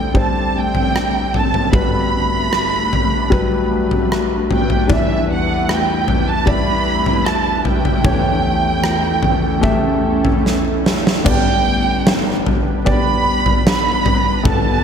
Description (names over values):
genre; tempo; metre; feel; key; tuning
pop ballad; 76 BPM; 4/4; straight; G major; A4 = 440 Hz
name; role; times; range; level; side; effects
warm studio violin section; melody; 0.0-14.8 s; E5 to B5; -20 LUFS; right 5 dB; none
warm concert grand piano; accompaniment; 0.0-14.8 s; G1 to E5; -20 LUFS; left 3 dB; none
granular cloud pad; sustained chords; 0.0-14.8 s; E2 to D5; -24 LUFS; right 2 dB; built-in reverb
huge arena drum kit; drums; 0.1-14.6 s; crash cymbal, kick drum, rim click, snare drum, toms; -17 LUFS; equal; none
room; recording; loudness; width
light reverb, small room ambience; none; -14 LUFS; side -7 dB against mid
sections
0.0-11.3 A section; 11.3-14.8 B section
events
drum fill 10.5-11.3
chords
0.0 D7sus4; 1.7 Gmaj7; 4.9 Em7; 8.1 A7/E; 11.3 G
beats
0.14 0.94 | 1.74 2.53 3.32 4.11 | 4.90 5.69 6.48 7.26 | 8.05 8.84 9.64 10.45 | 11.27 12.07 12.87 13.66 | 14.45